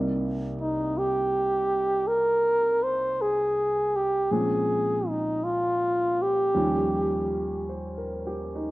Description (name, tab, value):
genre	jazz ballad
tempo	54 BPM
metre	4/4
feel	swing 68% on 8ths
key	C minor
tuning	A4 = 441 Hz
part	warm baby grand piano	accompaniment	0.0-8.7 s	C2 to D5	-30 LUFS	right 1 dB	cassette tape
part	breathy flugelhorn	melody	0.6-7.7 s	Eb4 to C5	-23 LUFS	equal	cassette tape
room	moderate spring reverb, RT60 1.2 s, studio ambience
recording	home recording on cassette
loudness	-23 LUFS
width	side -18 dB against mid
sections	0.0-8.7 A section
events	none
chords	0.0 Cm9; 4.3 Bbm7; 6.5 Eb7